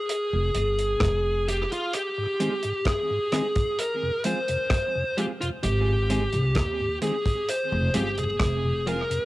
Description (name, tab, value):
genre	dub reggae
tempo	65 BPM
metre	4/4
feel	straight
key	F minor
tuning	A4 = 440 Hz
part	dark smooth lead guitar	melody	0.0-9.3 s	F4 to C5	-26 LUFS	equal	overdrive, cassette tape, tape echo, plate reverb
part	damped 70s drum kit	drums	0.1-9.3 s	hi-hat, kick drum, rim click	-28 LUFS	equal	tape echo
part	mellow tonewheel organ	accompaniment	0.3-9.2 s	F2 to C4	-32 LUFS	left 1 dB	high-pass filter, cassette tape, tape echo, plate reverb
part	upright bass	bass	0.3-9.0 s	F1 to Eb2	-26 LUFS	equal	none
part	clean electric guitar	accompaniment	0.5-9.0 s	Ab3 to Ab4	-34 LUFS	right 2 dB	high-pass filter, cassette tape, tape echo, plate reverb
room	light reverb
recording	home recording on cassette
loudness	-23 LUFS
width	side -18 dB against mid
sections	0.0-9.3 A section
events	none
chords	0.1 Fm; 1.9 Ab; 3.8 Fm; 5.6 Ab; 7.5 Fm